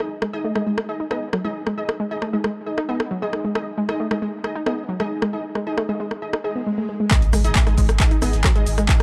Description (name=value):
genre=driving peak-time techno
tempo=135 BPM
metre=4/4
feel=straight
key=G# minor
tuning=A4 = 441 Hz
part: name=rave stab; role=stabs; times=0.0-9.0 s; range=D#4 to D#5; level=-31 LUFS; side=equal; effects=chorus, built-in reverb, cassette tape, sidechain pumping, digital delay
part: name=techno drum kit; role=drums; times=0.0-9.0 s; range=handclaps, hi-hat, rim click, shaker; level=-27 LUFS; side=equal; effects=overdrive, sidechain pumping on hats, sidechain pumping on perc
part: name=warbly dusty pluck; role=riff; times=0.2-8.9 s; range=F#3 to G#4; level=-28 LUFS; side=equal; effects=chorus, sidechain pumping, digital delay
part: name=swell and impact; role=sound effects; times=6.5-8.9 s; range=none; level=-31 LUFS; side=equal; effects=none
part: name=electronic kick drum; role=drums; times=7.1-9.0 s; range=none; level=-20 LUFS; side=equal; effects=none
part: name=unplugged drum kit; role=drums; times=7.1-9.0 s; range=none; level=barely audible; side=none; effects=none
part: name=saturated sub bass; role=bass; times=7.3-8.9 s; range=G#1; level=-23 LUFS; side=equal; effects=overdrive, sidechain pumping, low-pass filter
room=light reverb, studio ambience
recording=dark, warm production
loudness=-22 LUFS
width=mono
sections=0.0-7.1 A section; 7.1-9.0 B section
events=filter sweep on synth arpeggio sound 0.0-7.1; swell 6.5-7.1; drop 7.1-9.0; impact 7.1-8.9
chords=0.0 G#5